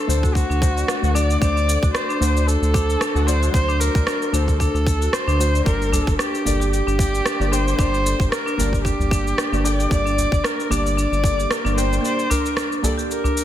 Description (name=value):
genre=organic downtempo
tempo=113 BPM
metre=4/4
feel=swing 55% on 16ths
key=unclear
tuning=A4 = 440 Hz
part: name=dark kamancheh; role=melody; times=0.0-13.4 s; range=F#4 to D5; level=-24 LUFS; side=equal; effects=tape echo
part: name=deep mellow chord stab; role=accompaniment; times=0.0-13.4 s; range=F#3 to G5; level=-28 LUFS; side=left 2 dB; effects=chorus, sidechain pumping, tape echo
part: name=marimba with medium mallets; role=arpeggios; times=0.0-13.3 s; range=D4 to D5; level=-26 LUFS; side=left 1 dB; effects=tape echo
part: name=round analog bass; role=bass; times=0.1-12.0 s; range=G1 to D2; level=-21 LUFS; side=equal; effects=none
part: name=electronic shaker and rim click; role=drums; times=0.1-13.4 s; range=none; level=-26 LUFS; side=equal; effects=soft clipping on snare
part: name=electronic kick drum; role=drums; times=0.2-11.4 s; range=none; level=-20 LUFS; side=equal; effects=none
part: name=udu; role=percussion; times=5.9-13.3 s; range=none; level=-25 LUFS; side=equal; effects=none
room=light reverb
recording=dense, heavily limited modern master, faint mains hum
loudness=-17 LUFS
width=side -11 dB against mid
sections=0.0-13.4 A section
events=none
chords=0.0 D7; 5.7 Gm